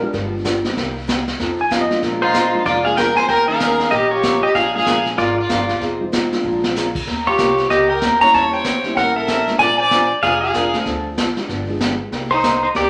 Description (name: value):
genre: country, western swing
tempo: 190 BPM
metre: 4/4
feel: swing 61% on 8ths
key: Bb mixolydian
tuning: A4 = 439 Hz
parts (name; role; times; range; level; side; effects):
- clean lap steel guitar; second line; 0.0-2.0 s; Bb4 to Ab5; -23 LUFS; equal; none
- dark upright piano; accompaniment; 0.0-12.1 s; Eb3 to Bb4; -28 LUFS; equal; none
- picked old ladder-braced acoustic guitar; accompaniment; 0.1-12.9 s; C3 to Bb4; -28 LUFS; equal; none
- upright bass; bass; 0.1-12.9 s; F1 to F2; -34 LUFS; equal; none
- vintage brush drum kit; drums; 0.1-12.9 s; brushed snare drum, crash cymbal, hi-hat, kick drum, snare drum; -26 LUFS; equal; none
- pedal steel guitar; melody; 2.2-12.9 s; Eb4 to Bb5; -19 LUFS; equal; none
- clear fiddle; second line; 2.2-12.9 s; Eb4 to D5; -22 LUFS; equal; none
room: wet large studio reverb, RT60 0.8 s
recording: vinyl crackle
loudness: -17 LUFS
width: mono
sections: 0.0-2.0 A section; 2.0-12.9 B section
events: electric slide guitar solo 0.0-2.0; drum fill 6.4-6.8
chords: 0.1 G7b9; 0.8 Cm7; 1.4 F7; 2.0 Bb7; 3.3 Eb7; 4.5 Bb7; 5.8 Fm7; 6.4 Bb7; 7.1 Eb7; 8.3 Edim7; 9.6 Bb7; 10.9 Dm7; 11.5 G7b9; 12.1 Cm7